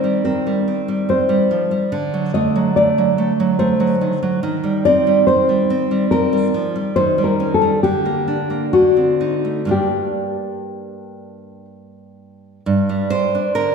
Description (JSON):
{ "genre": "romantic duo for nylon-string guitar and classical guitar", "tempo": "59-72 BPM", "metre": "3/4", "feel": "rubato", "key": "G minor", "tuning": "A4 = 440 Hz", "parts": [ { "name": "nylon-string guitar", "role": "melody", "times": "0.0-11.6 s", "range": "F#4 to Eb5", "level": "-17 LUFS", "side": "left 2 dB", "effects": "none" }, { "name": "nylon-string guitar", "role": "accompaniment", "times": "0.0-13.7 s", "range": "G2 to C5", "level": "-18 LUFS", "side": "right 2 dB", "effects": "none" } ], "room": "wet scoring stage reverb, RT60 1.7 s", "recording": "recorded in a church or concert hall", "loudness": "-15 LUFS", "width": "side -5 dB against mid", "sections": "0.0-12.7 A section; 12.7-13.7 A section", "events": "none", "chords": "0.0 Cm/Eb; 1.9 D; 4.4 Cm/Eb; 7.0 Eb7; 7.8 Gm/D; 8.7 D7b9; 9.7 Gm", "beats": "0.24 1.09 | 1.93 2.77 3.60 | 4.43 5.28 6.12 | 6.97 7.84 8.73 | 9.71 10.71 11.69 | 12.66 13.56" }